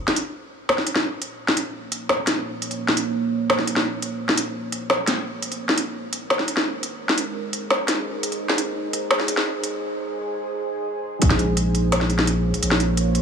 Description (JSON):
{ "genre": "half-time drum and bass", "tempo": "171 BPM", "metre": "4/4", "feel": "half-time", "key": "Bb minor", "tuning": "A4 = 439 Hz", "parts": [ { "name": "deep dark ambient pad", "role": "sustained chords", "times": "1.9-13.2 s", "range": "Ab3 to Db5", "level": "-27 LUFS", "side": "right 3 dB", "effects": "chorus, built-in reverb, sidechain pumping" }, { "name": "organic electronic drum kit", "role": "drums", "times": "0.1-13.2 s", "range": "hi-hat, snare drum", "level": "-22 LUFS", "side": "equal", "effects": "none" }, { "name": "saturated sub bass", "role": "bass", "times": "11.2-13.2 s", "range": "Bb1", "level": "-21 LUFS", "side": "equal", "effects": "tube saturation" }, { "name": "electronic kick drum", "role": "drums", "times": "11.2-11.3 s", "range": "none", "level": "-21 LUFS", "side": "equal", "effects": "none" } ], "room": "light reverb", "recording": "high-pass filter, small room reverb", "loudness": "-20 LUFS", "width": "side -6 dB against mid", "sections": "0.0-11.2 A section; 11.2-13.2 B section", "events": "build-up 0.0-11.2; filter sweep on ambient pad 0.0-11.2; break 9.8-11.2; drop 11.2-13.2", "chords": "0.0 Bbm; 5.6 Ab; 11.2 Bbm", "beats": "0.34 0.69 1.04 | 1.39 1.74 2.10 2.45 | 2.80 3.15 3.50 3.85 | 4.20 4.55 4.90 5.25 | 5.60 5.96 6.31 6.66 | 7.01 7.36 7.71 8.06 | 8.41 8.76 9.11 9.46 | 9.81 10.16 10.52 10.87 | 11.22 11.57 11.92 12.27 | 12.62 12.97" }